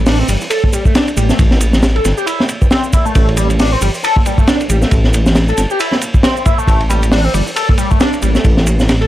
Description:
breakbeat, breaks; 136 BPM; 4/4; swing 58% on 16ths; A minor pentatonic; A4 = 440 Hz
dark detuned saw bass; bass; 0.0-9.1 s; G1 to A1; -14 LUFS; equal
overdriven synth lead; riff; 0.1-9.1 s; G3 to A4; -18 LUFS; equal; phaser, ensemble chorus, dub echo
crunchy breakbeat drum kit; drums; 0.1-9.1 s; hi-hat, kick drum, ride cymbal, snare drum; -13 LUFS; equal
shaker; drums; 0.1-9.0 s; -28 LUFS; right 4 dB
bongos and congas; percussion; 0.2-9.0 s; -27 LUFS; right 3 dB
little or no reverb; -10 LUFS; side -14 dB against mid
0.0-9.1 A section

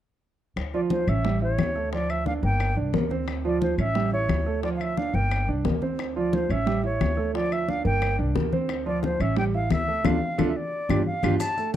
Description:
latin, salsa; 177 BPM; 4/4; straight; D minor; A4 = 441 Hz
upright bass; bass; 0.6-11.4 s; G1 to D2; -28 LUFS; left 1 dB
bongos; percussion; 0.6-11.8 s; -32 LUFS; left 9 dB
claves; percussion; 0.6-11.6 s; -38 LUFS; left 8 dB
congas; percussion; 0.6-11.8 s; -31 LUFS; left 3 dB
concert flute; melody; 0.7-11.8 s; C5 to A5; -29 LUFS; equal
warm grand piano; accompaniment; 0.7-11.8 s; F3 to E5; -28 LUFS; right 6 dB
maracas; percussion; 11.4-11.8 s; -40 LUFS; right 6 dB
small room ambience; dry, close 1970s-style studio recording; -22 LUFS; side -11 dB against mid
0.6-11.4 A section
band accent 10.0-11.4; drum fill 10.4-11.4
0.6 Dm; 1.2 A7; 1.9 Dm; 2.6 Gm; 3.3 Dm7; 4.0 A7; 4.6 Dm; 5.3 Gm; 6.0 Dm7; 6.7 A7; 7.3 Dm; 8.0 Gm; 8.7 Dm7; 9.4 A5; 10.0 Dm; 10.7 G5

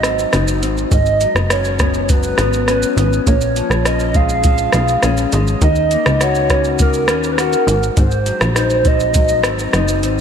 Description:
indie pop, bedroom pop; 102 BPM; 4/4; straight; A4 = 440 Hz
warbly nostalgic lead; melody; 0.0-10.0 s; Bb4 to F5; -18 LUFS; right 3 dB; analog chorus, slapback echo
electric guitar through a small old amp; accompaniment; 0.0-10.2 s; Ab2 to Gb4; -20 LUFS; left 5 dB; wide subtle chorus, vibrato effect, slapback echo
plucky analog bass; bass; 0.0-10.2 s; Gb1 to Eb2; -18 LUFS; equal
soft vintage rhythm box; drums; 0.0-10.2 s; hi-hat, kick drum, rim click, shaker; -17 LUFS; equal
light reverb; -13 LUFS; side -7 dB against mid
0.0-10.2 A section
0.0 Ab7; 0.9 Db7sus4; 3.3 Bbm7; 5.6 Ebm7; 7.7 Ab7

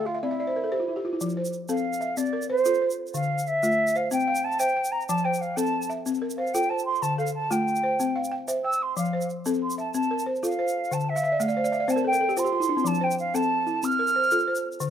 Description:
west african traditional, West African string and xylophone music; 124 BPM (dotted quarters); 12/8; straight; F major; A4 = 439 Hz
mellow concert flute; melody; 0.0-14.6 s; E4 to F6; -25 LUFS; right 2 dB
balafon; arpeggios; 0.0-14.9 s; D3 to G5; -26 LUFS; left 1 dB
egg shaker; percussion; 1.2-14.9 s; -38 LUFS; right 4 dB
moderate plate reverb, RT60 2.5 s; rough home demo mix; -23 LUFS; side -9 dB against mid
0.0-1.2 A section; 1.2-14.9 B section
balafon fill 0.0-1.2, 11.2-12.9; flute solo 1.2-14.9
0.2 N.C.; 1.2 F; 3.1 Dm; 4.1 C; 5.1 F; 7.0 Dm; 8.0 C; 9.0 F; 10.9 Dm; 11.9 N.C.; 12.9 F

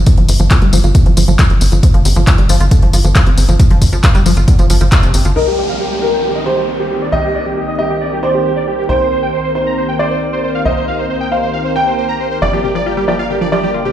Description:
uplifting trance; 136 BPM; 4/4; straight; A4 = 440 Hz
tight sequencer bass; bass; 0.0-13.9 s; F1 to C2; -16 LUFS; equal; sidechain pumping
tight sequenced synth; arpeggios; 0.1-5.3, 12.4-13.9 s; C3 to F4; -19 LUFS; equal; chorus, sidechain pumping, dub echo
electronic kick drum; drums; 0.1-5.0 s; -10 LUFS; equal
punchy analog drum machine; drums; 0.1-5.4 s; crash cymbal, handclaps, hi-hat, tambourine; -18 LUFS; left 1 dB; low-pass filter on hats, low-pass filter on snare, low-pass filter on perc, low-pass filter on cymbals
dense compressed supersaw; melody; 5.4-13.9 s; G4 to Bb5; -19 LUFS; right 1 dB; sidechain pumping, low-pass filter, dub echo
warm grand piano; second line; 5.4-13.9 s; Bb4 to G5; -17 LUFS; right 1 dB; tape echo
lush unison pad; sustained chords; 6.2-13.9 s; D3 to Bb4; -21 LUFS; left 1 dB; chorus, sidechain pumping
downlifter; sound effects; 5.4-8.9 s; -25 LUFS; equal
light reverb; played on a big sound system in a bare room, stone room reverb; -10 LUFS; side -11 dB against mid
0.0-5.4 A section; 5.4-13.9 B section
filter sweep on synth arpeggio sound 0.0-5.4; band accent 4.9; filter sweep on supersaw synth 5.4-13.9
0.0 G5; 5.4 Cm7; 12.4 Gm

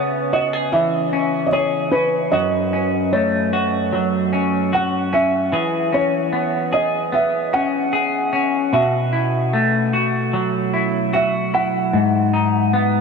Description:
dream pop; 75 BPM; 4/4; straight; C# minor; A4 = 443 Hz
felt-muted upright piano; melody; 0.0-13.0 s; B4 to F#5; -21 LUFS; right 1 dB; ping-pong delay
semi-hollow electric guitar; arpeggios; 0.0-13.0 s; F#2 to G#4; -18 LUFS; left 1 dB; lush chorus, ping-pong delay
wet huge ambient reverb, RT60 7.8 s; dark, warm production; -16 LUFS; side -5 dB against mid
0.0-11.9 A section; 11.9-13.0 B section
0.0 C#m7; 2.3 F#m; 5.5 E6; 8.7 B7sus4; 11.9 G#m7

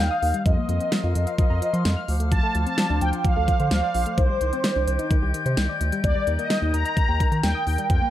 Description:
synth-pop; 129 BPM; 4/4; straight; A4 = 442 Hz
mellow synth brass; melody; 0.0-8.1 s; C5 to Bb5; -26 LUFS; right 1 dB; chorus, phaser, slapback echo
flute section; sustained chords; 0.0-8.1 s; Bb4 to G6; -32 LUFS; left 4 dB
soft round pluck; arpeggios; 0.0-8.1 s; Eb3 to F6; -30 LUFS; left 4 dB; chorus, slapback echo
round analog bass; bass; 0.0-8.0 s; Bb1 to F3; -24 LUFS; equal
pop drum kit; drums; 0.2-8.0 s; hi-hat, kick drum, snare drum; -24 LUFS; equal
little or no reverb; -20 LUFS; side -12 dB against mid
0.0-8.1 A section
0.5 Fsus4; 2.1 Dm7; 4.2 Cmadd9; 6.0 Eb

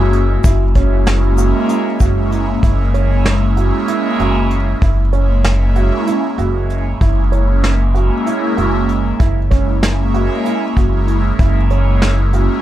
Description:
progressive instrumental, band music in an uneven meter; 192 BPM (eighths); 7/8; straight; F# mixolydian; A4 = 439 Hz
vibraphone with medium mallets; second line; 0.0-2.3 s; F#4; -24 LUFS; left 13 dB
dark grand piano; arpeggios; 0.0-12.5 s; C#4 to F#4; -23 LUFS; right 9 dB
upright bass; bass; 0.0-12.5 s; F#1; -15 LUFS; equal
vintage brush drum kit; drums; 0.1-12.5 s; hi-hat, kick drum, snare drum; -15 LUFS; equal
egg shaker; percussion; 0.4-2.3 s; -34 LUFS; left 15 dB
airy breathy pad; accompaniment; 0.8-12.6 s; G#3 to E4; -18 LUFS; right 1 dB; chorus, phaser
light reverb; -12 LUFS; side -13 dB against mid
0.0-2.6 A section; 2.6-12.6 B section
0.0 F#7

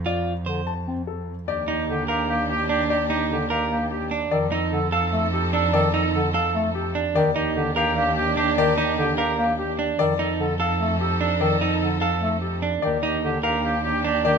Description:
classical, minimalist pattern music; 296 BPM (eighths); 7/8; straight; A4 = 440 Hz
rich cello; bass; 0.0-14.4 s; Eb2 to F2; -27 LUFS; right 2 dB
bright baby grand piano; melody; 0.1-14.4 s; G4 to A5; -29 LUFS; left 9 dB
electric guitar at the edge of break-up; arpeggios; 0.1-14.3 s; D4 to C5; -26 LUFS; right 6 dB
warm bass clarinet; accompaniment; 0.5-14.4 s; D3 to C4; -26 LUFS; left 3 dB
clear oboe; second line; 1.5-14.4 s; G4 to A4; -28 LUFS; right 3 dB
rich studio string section; sustained chords; 1.5-14.4 s; D4 to A4; -30 LUFS; equal
moderate large studio reverb, RT60 1.3 s; close, detailed microphones; -20 LUFS; side -6 dB against mid
0.0-1.5 A section; 1.5-14.4 B section
0.0 F; 1.5 Ebmaj7; 4.3 F13; 7.2 Ebmaj7; 10.0 F13; 12.8 Ebmaj7

